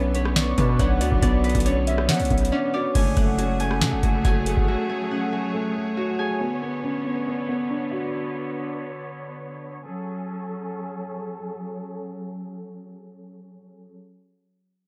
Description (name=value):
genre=hip hop, trap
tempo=139 BPM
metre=4/4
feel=half-time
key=F# minor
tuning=A4 = 438 Hz
part: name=glassy wavetable pluck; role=second line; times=0.0-2.9 s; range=B4 to F#5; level=-34 LUFS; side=equal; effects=chorus, dub echo
part: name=dark concert grand piano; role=accompaniment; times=0.0-9.0 s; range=A3 to G#4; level=-29 LUFS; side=equal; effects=low-pass filter, dub echo
part: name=bright symphonic string section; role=sustained chords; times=0.0-13.9 s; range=D3 to C#5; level=-35 LUFS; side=equal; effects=low-pass filter
part: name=concert harp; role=arpeggios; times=0.0-8.4 s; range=B3 to C#6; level=-32 LUFS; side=equal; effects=low-pass filter, dub echo
part: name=distorted 808-style bass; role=bass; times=0.0-4.7 s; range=F#1 to F#3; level=-26 LUFS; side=equal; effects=distortion
part: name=booming analog drum machine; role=drums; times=0.1-4.8 s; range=crash cymbal, hi-hat, kick drum, rim click, snare drum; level=-25 LUFS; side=equal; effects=none
room=light reverb, digital ambience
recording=echo-heavy mix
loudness=-24 LUFS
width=mono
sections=0.0-3.0 A section; 3.0-9.9 B section; 9.9-13.3 C section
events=break 2.5-3.0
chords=0.0 Bmadd9; 3.0 F#madd9; 6.4 Bmadd9; 9.9 F#madd9